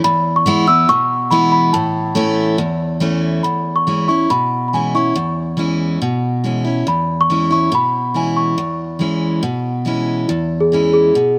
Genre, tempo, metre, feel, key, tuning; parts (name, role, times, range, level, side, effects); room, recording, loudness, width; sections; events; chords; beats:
country; 140 BPM; 4/4; straight; A4 = 439 Hz
celesta; melody; 0.0-11.4 s; E4 to E6; -18 LUFS; equal
picked steel-string acoustic guitar; accompaniment; 0.0-11.4 s; E2 to E4; -19 LUFS; equal
light reverb; -16 LUFS; mono
0.0-3.4 A section; 3.4-10.3 B section; 10.3-11.4 C section
0.0 E; 1.7 A; 3.4 E6
| 0.03 0.46 0.88 1.31 | 1.73 2.16 2.59 3.02 | 3.44 3.87 4.30 4.72 | 5.15 5.58 6.01 6.44 | 6.87 7.29 7.72 8.15 | 8.58 9.01 9.44 9.87 | 10.29 10.72 11.15